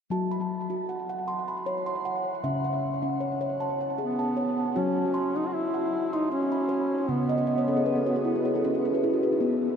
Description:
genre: world meditative, meditative tuned percussion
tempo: 78 BPM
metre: 3/4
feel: swing 53% on 16ths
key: F# dorian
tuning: A4 = 440 Hz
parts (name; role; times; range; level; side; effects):
- steel tongue drum; arpeggios; 0.1-9.8 s; C#3 to B#5; -26 LUFS; equal; shimmer reverb, tape echo
- dark duduk; melody; 4.0-9.0 s; B3 to F#4; -28 LUFS; equal; shimmer reverb, tape echo
room: wet huge ambient reverb, RT60 8.5 s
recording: dreamy mix soaked in reverb, lossy compression artefacts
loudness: -25 LUFS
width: side -7 dB against mid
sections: 0.1-4.8 A section; 4.8-9.8 B section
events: steel tongue drum fill 7.3-9.4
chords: 0.1 F#m; 2.4 C#m; 4.8 F#5; 7.1 C#5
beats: | 0.12 0.89 1.67 | 2.44 3.22 4.00 | 4.77 5.55 6.32 | 7.09 7.87 8.64 | 9.41

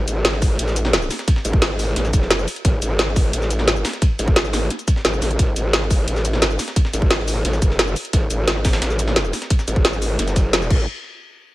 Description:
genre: dark technical drum and bass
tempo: 175 BPM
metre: 4/4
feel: straight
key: unclear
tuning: A4 = 439 Hz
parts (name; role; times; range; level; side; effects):
- growl bass; bass; 0.0-10.9 s; F#1 to A1; -21 LUFS; equal; chorus, overdrive, sidechain pumping
- breakbeat sampler-style drum kit; drums; 0.1-10.7 s; hi-hat, ride cymbal, snare drum; -29 LUFS; right 1 dB; high-pass filter on cymbals, high-pass filter on snare, high-pass filter on hats
- drum and bass drum kit; drums; 0.1-10.8 s; cabasa, crash cymbal, hi-hat, snare drum; -21 LUFS; equal; none
- electronic kick drum; drums; 0.4-10.8 s; none; -17 LUFS; equal; none
room: little or no reverb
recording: none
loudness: -16 LUFS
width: side -17 dB against mid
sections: 0.0-10.9 A section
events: none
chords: none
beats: 0.25 0.59 0.93 | 1.28 1.62 1.96 2.31 | 2.65 2.99 3.33 3.68 | 4.02 4.36 4.71 5.05 | 5.39 5.73 6.08 6.42 | 6.76 7.11 7.45 7.79 | 8.13 8.48 8.82 9.16 | 9.51 9.85 10.19 10.53

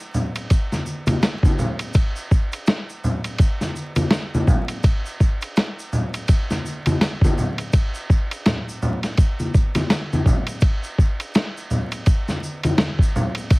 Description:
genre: hip hop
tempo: 83 BPM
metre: 4/4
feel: swing 59% on 16ths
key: none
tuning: none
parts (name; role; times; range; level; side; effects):
- tube shaker and congas; percussion; 0.0-13.6 s; none; -23 LUFS; equal; none
- lo-fi sampler-style drum kit; drums; 0.4-13.6 s; hi-hat, kick drum, ride cymbal, snare drum; -19 LUFS; equal; none
room: light reverb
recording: heavily compressed radio sound, multiband compression, vinyl crackle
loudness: -18 LUFS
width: side -24 dB against mid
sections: 0.0-10.6 A section; 10.6-13.6 B section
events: none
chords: none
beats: 0.50 1.22 | 1.95 2.67 3.39 4.11 | 4.84 5.56 6.28 7.00 | 7.73 8.45 9.17 9.90 | 10.62 11.34 12.06 12.79 | 13.51

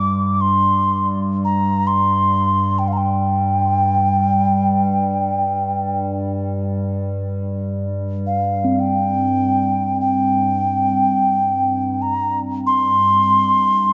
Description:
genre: world meditative, free-time meditation music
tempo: free time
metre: none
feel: none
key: unclear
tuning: A4 = 440 Hz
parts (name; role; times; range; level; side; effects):
- mellow alto ocarina; melody; 0.0-13.9 s; F5 to D6; -20 LUFS; equal; none
- warbly tape-like pad; drone; 0.0-13.9 s; G2 to G3; -24 LUFS; equal; chorus, built-in reverb
- bronze singing bowl; texture; 0.0-13.9 s; C4 to D4; -28 LUFS; equal; none
room: wet church reverb, RT60 3.0 s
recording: nothing above 7.7 kHz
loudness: -18 LUFS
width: mono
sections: 0.0-13.9 A section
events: none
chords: none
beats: free time

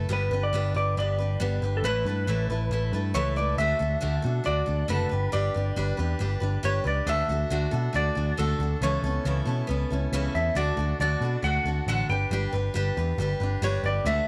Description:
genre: folk rock and heartland rock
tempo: 138 BPM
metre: 4/4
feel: straight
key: D major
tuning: A4 = 440 Hz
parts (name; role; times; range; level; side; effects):
- picked steel-string acoustic guitar; accompaniment; 0.0-14.3 s; A2 to B4; -33 LUFS; equal; none
- picked electric bass; bass; 0.0-14.2 s; F#1 to B2; -29 LUFS; equal; none
- clean lap steel guitar; melody; 0.1-14.3 s; A4 to G5; -31 LUFS; equal; none
room: small room ambience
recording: none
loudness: -26 LUFS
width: mono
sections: 0.0-3.6 A section; 3.6-14.3 B section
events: none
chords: 0.1 G; 1.9 Asus2; 3.6 D; 5.1 G; 7.1 D; 8.8 Aadd9/C#; 10.6 D; 12.1 G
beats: | 0.10 0.54 0.98 1.41 | 1.85 2.29 2.72 3.16 | 3.59 4.03 4.46 4.90 | 5.33 5.77 6.20 6.64 | 7.08 7.51 7.95 8.38 | 8.82 9.26 9.69 10.13 | 10.56 11.00 11.44 11.87 | 12.31 12.75 13.19 13.62 | 14.06

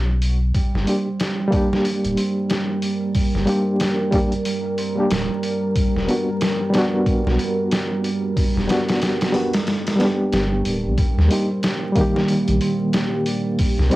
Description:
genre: trip hop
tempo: 92 BPM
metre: 4/4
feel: swing 60% on 16ths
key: unclear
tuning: A4 = 440 Hz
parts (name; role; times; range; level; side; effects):
- warm sub bass; bass; 0.0-13.9 s; D1 to Eb2; -20 LUFS; equal; tube saturation
- trip hop sampler-style drum kit; drums; 0.2-14.0 s; hi-hat, kick drum, snare drum; -23 LUFS; equal; cassette tape
- deep dark ambient pad; sustained chords; 2.0-14.0 s; G3 to Bb4; -27 LUFS; left 1 dB; chorus, built-in reverb
- concert harp; arpeggios; 0.5-14.0 s; G3 to G4; -25 LUFS; right 4 dB; tape echo
- bright reed electric piano; accompaniment; 0.8-14.0 s; Eb3 to G4; -22 LUFS; equal; overdrive, fast tremolo
room: light reverb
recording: home recording on cassette, vinyl crackle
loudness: -18 LUFS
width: side -17 dB against mid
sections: 0.0-11.0 A section; 11.0-14.0 B section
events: kick drops out 9.7-11.0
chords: 0.0 N.C.; 0.5 Gm; 5.8 Em7 (rootless); 11.0 Eb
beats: | 0.54 1.19 1.84 2.50 | 3.15 3.80 4.45 5.11 | 5.76 6.41 7.06 7.71 | 8.37 9.02 9.67 10.32 | 10.97 11.63 12.28 12.93 | 13.58

